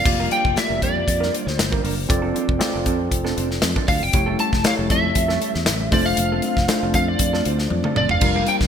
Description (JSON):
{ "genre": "polished 1980s jazz-funk pop", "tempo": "118 BPM", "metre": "4/4", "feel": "swing 54% on 16ths", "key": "unclear", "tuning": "A4 = 440 Hz", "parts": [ { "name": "lightly driven lead guitar", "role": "melody", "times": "0.0-8.6 s", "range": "D5 to A5", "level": "-23 LUFS", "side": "equal", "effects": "analog chorus" }, { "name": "tine electric piano", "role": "accompaniment", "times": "0.0-8.7 s", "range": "G3 to D5", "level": "-25 LUFS", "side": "left 2 dB", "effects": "overdrive, wide subtle chorus" }, { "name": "fingered electric bass", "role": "bass", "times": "0.0-8.7 s", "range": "F1 to F2", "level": "-25 LUFS", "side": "equal", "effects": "none" }, { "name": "mellow electric guitar", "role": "riff", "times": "0.1-8.7 s", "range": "F3 to C5", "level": "-29 LUFS", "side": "right 7 dB", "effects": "analog chorus" }, { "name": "modern studio drum kit", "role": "drums", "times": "0.1-8.7 s", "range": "crash cymbal, hi-hat, kick drum, snare drum, toms", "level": "-22 LUFS", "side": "equal", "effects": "gated reverb" }, { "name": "congas", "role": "percussion", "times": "0.1-8.6 s", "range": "none", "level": "-38 LUFS", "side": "left 1 dB", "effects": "none" } ], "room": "moderate lush hall reverb, RT60 2.2 s", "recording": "bright 1980s-style digital production", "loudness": "-18 LUFS", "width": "side -8 dB against mid", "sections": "0.1-8.7 A section", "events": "drum fill 7.7-8.2", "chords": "0.1 Bb6/F; 2.1 F6; 4.1 A7/F; 5.9 Dm7/F" }